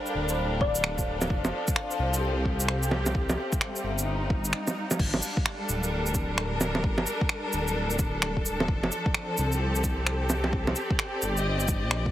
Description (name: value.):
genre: future garage.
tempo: 130 BPM.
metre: 4/4.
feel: swing 63% on 16ths.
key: G minor.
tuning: A4 = 443 Hz.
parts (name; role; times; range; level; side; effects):
bright studio string section; sustained chords; 0.0-12.1 s; C3 to Eb5; -30 LUFS; left 1 dB; vintage 12-bit sampler grit, sidechain pumping.
wind-like tuned noise texture; texture; 0.0-5.0 s; F5; -41 LUFS; right 3 dB; built-in reverb.
dark detuned saw bass; bass; 0.1-12.1 s; D1 to C2; -30 LUFS; equal; sidechain pumping.
organic electronic drum kit; drums; 0.1-12.0 s; bongos, crash cymbal, finger snaps, shaker; -29 LUFS; right 1 dB; none.
thumb-piano-like synth pluck; melody; 0.6-1.3 s; D5; -35 LUFS; left 2 dB; wide subtle chorus, tape echo.
electronic kick drum; drums; 0.6-12.1 s; none; -29 LUFS; equal; none.
room: light reverb.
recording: heavily compressed radio sound, multiband compression.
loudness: -25 LUFS.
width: side -13 dB against mid.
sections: 0.0-5.0 A section; 5.0-12.1 B section.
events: none.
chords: 0.0 Gm7; 1.3 F; 3.1 Cm; 5.0 Gm; 8.7 F; 10.5 Cm7.